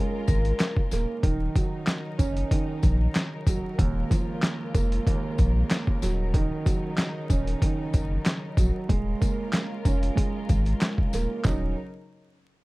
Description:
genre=hip hop, boom-bap hip-hop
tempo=94 BPM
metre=4/4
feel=swing 55% on 16ths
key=Eb minor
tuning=A4 = 439 Hz
part: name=vibraphone with hard mallets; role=melody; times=0.0-0.7 s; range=Bb4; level=-34 LUFS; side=left 3 dB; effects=high-pass filter, low-pass filter, analog delay
part: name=dark concert grand piano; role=accompaniment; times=0.0-11.7 s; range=Eb2 to Eb4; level=-31 LUFS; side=right 4 dB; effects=cassette tape, high-pass filter, low-pass filter
part: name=warm studio string section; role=sustained chords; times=0.0-11.7 s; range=Db3 to Bb4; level=-38 LUFS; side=left 3 dB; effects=high-pass filter, low-pass filter
part: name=saturated sub bass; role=bass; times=0.3-11.7 s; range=Eb1 to Bb1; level=-26 LUFS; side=equal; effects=none
part: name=boom bap sampler-style drum kit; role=drums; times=0.3-11.6 s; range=handclaps, hi-hat, kick drum, snare drum, toms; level=-24 LUFS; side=equal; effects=overdrive
part: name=tambourine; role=percussion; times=0.3-11.7 s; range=none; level=-45 LUFS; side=left 13 dB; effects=none
room=little or no reverb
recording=dark, warm production, vinyl crackle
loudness=-23 LUFS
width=side -21 dB against mid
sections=0.0-1.2 A section; 1.2-11.4 B section; 11.4-12.6 C section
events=none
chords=0.0 Bbm7; 1.2 Ebm7; 3.8 Db6/Eb; 6.0 Ebm7; 8.9 Bbm7/Eb; 11.4 Ebm7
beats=0.60 | 1.24 1.87 2.51 3.15 | 3.79 4.43 5.06 5.70 | 6.34 6.98 7.62 8.26 | 8.89 9.53 10.17 10.81 | 11.45

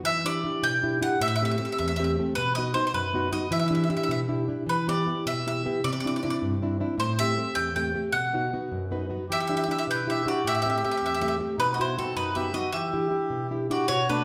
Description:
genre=italian folk, Italian serenade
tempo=104 BPM (dotted quarters)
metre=6/8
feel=straight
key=E minor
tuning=A4 = 442 Hz
part: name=nylon-string guitar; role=accompaniment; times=0.0-14.2 s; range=E2 to B4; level=-30 LUFS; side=equal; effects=none
part: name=bowl-back mandolin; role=melody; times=0.1-14.2 s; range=A4 to G5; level=-30 LUFS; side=equal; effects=none
part: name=accordion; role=second line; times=9.3-14.2 s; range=C4 to B4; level=-32 LUFS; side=equal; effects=none
room=wet large studio reverb, RT60 1.2 s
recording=band playing live in one room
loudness=-27 LUFS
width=mono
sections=0.0-4.7 A section; 4.7-13.9 A section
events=nylon-string guitar fill 8.7-9.3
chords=0.0 Em7; 1.2 Am7; 2.4 B; 3.5 Em7; 4.7 Em; 5.8 Cadd9; 7.0 Am7; 8.1 B; 9.3 Em7; 10.4 Am7; 11.6 B; 12.7 Em7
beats=| 0.04 0.62 | 1.20 1.78 | 2.36 2.93 | 3.51 4.09 | 4.67 5.25 | 5.83 6.40 | 6.98 7.56 | 8.13 8.71 | 9.29 9.87 | 10.44 11.02 | 11.59 12.16 | 12.73 13.31 | 13.89

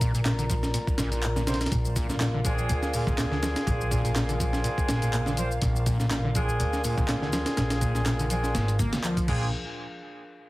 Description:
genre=breakbeat, breaks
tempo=123 BPM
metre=4/4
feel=swing 55% on 16ths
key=unclear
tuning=A4 = 440 Hz
part: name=dark analog pad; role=sustained chords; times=0.0-9.5 s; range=D4 to Bb5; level=-35 LUFS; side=left 1 dB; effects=chorus, sidechain pumping
part: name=overdriven acid bass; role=riff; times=0.0-9.5 s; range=Ab2 to Bb3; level=-31 LUFS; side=equal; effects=distortion, analog chorus, digital delay
part: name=upright bass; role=bass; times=0.0-9.5 s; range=Ab1 to D2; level=-29 LUFS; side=equal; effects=none
part: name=breakbeat sampler-style drum kit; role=drums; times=0.0-9.4 s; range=crash cymbal, hi-hat, kick drum, snare drum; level=-29 LUFS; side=equal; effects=small room reverb
part: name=electronic shaker and handclaps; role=drums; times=0.0-9.3 s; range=none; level=-36 LUFS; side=left 1 dB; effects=small room reverb
part: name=mellow horn section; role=stabs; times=1.5-9.5 s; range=C4 to C5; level=-32 LUFS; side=right 1 dB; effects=vintage 12-bit sampler grit, digital delay
room=moderate studio reverb, RT60 0.6 s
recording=heavily compressed radio sound, multiband compression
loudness=-24 LUFS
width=side -19 dB against mid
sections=0.0-9.5 A section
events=drop 0.0-9.5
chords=0.0 Bb7; 9.5 N.C.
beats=0.26 0.74 1.23 | 1.72 2.21 2.70 3.18 | 3.67 4.16 4.65 5.13 | 5.62 6.11 6.60 7.09 | 7.57 8.06 8.55 9.04

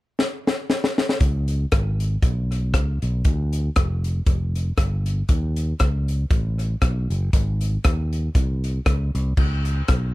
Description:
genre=uptempo gospel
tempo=118 BPM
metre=4/4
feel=swing 56% on 8ths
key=unclear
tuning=A4 = 440 Hz
part: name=crisp fusion drum kit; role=drums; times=0.2-10.0 s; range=crash cymbal, hi-hat, kick drum, rim click, snare drum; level=-21 LUFS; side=equal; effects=none
part: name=fingered electric bass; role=bass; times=1.2-10.1 s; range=F1 to D#2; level=-22 LUFS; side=equal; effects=none
room=little or no reverb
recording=none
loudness=-20 LUFS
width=side -18 dB against mid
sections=0.0-1.2 A section; 1.2-9.4 B section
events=drum fill 0.2-1.2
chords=none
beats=0.19 0.70 | 1.21 1.72 2.23 2.74 | 3.25 3.76 4.27 4.78 | 5.29 5.80 6.31 6.82 | 7.33 7.84 8.35 8.86 | 9.37 9.88

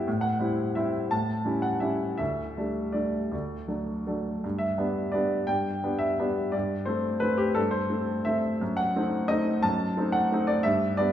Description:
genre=classical, piano waltz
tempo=154-188 BPM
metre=3/4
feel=rubato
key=G major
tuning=A4 = 441 Hz
part: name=clear baby grand piano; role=solo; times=0.0-11.1 s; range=D2 to A5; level=-25 LUFS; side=equal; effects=none
room=wet recital hall reverb, RT60 1.6 s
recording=recorded in a church or concert hall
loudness=-25 LUFS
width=side -10 dB against mid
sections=0.0-4.4 A section; 4.4-11.1 A section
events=none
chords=0.1 Am7; 1.1 A7; 2.2 Dsus4; 3.3 D; 4.4 G; 6.5 Am7/G; 8.6 F#dim7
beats=| 0.07 0.41 0.77 | 1.11 1.46 1.82 | 2.19 2.57 2.96 | 3.33 3.69 4.06 | 4.43 4.79 5.15 | 5.50 5.84 6.19 | 6.54 6.88 7.23 | 7.57 7.91 8.26 | 8.61 8.95 9.29 | 9.63 9.97 10.32 | 10.65 10.98

